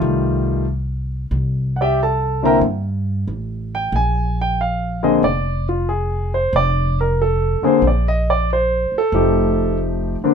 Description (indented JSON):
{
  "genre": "jazz piano trio",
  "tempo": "92 BPM",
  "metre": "4/4",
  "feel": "swing 69% on 8ths",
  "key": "unclear",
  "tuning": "A4 = 441 Hz",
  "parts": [
    { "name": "warm concert grand piano", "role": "melody", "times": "0.0-10.3 s", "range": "D3 to Bb5", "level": "-18 LUFS", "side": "left 1 dB", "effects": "none" },
    { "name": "upright bass", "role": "bass", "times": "0.0-10.2 s", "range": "F1 to G2", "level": "-20 LUFS", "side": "equal", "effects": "none" }
  ],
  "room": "light reverb",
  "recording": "minimal, uncompressed stereo recording",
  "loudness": "-16 LUFS",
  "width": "side -7 dB against mid",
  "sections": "0.0-10.3 A section",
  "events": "none",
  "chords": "0.0 F9; 1.3 C5; 3.9 Bb7; 7.8 Bbadd9; 9.1 F9"
}